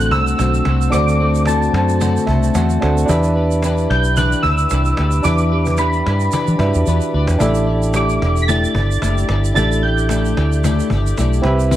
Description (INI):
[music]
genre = indie pop, bedroom pop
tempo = 111 BPM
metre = 4/4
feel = swing 55% on 16ths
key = unclear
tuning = A4 = 439 Hz
[part]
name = soft electric-piano-like synth keys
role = melody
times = 0.0-10.9 s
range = A5 to B6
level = -21 LUFS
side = right 1 dB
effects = ensemble chorus, analog delay
[part]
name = barky tine electric piano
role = accompaniment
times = 0.0-11.8 s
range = C4 to A5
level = -22 LUFS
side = right 4 dB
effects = overdrive, cassette tape
[part]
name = twelve-string electric guitar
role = accompaniment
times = 0.0-11.8 s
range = D3 to D5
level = -22 LUFS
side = left 6 dB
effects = wide subtle chorus, vibrato effect
[part]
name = vintage muted fingered electric bass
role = bass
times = 0.0-11.8 s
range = E1 to E3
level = -17 LUFS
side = equal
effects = none
[part]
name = cajon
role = drums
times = 0.0-11.8 s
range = none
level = -26 LUFS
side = equal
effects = none
[part]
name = tube shaker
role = percussion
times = 0.0-11.8 s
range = none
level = -33 LUFS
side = right 13 dB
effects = none
[sound]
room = light reverb, small room ambience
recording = none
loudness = -14 LUFS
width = side -13 dB against mid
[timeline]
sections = 0.0-11.8 A section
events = tine electric piano fill 2.0-3.1; drum fill 6.9-7.4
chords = 0.0 D7; 3.1 Em7; 7.4 A7sus4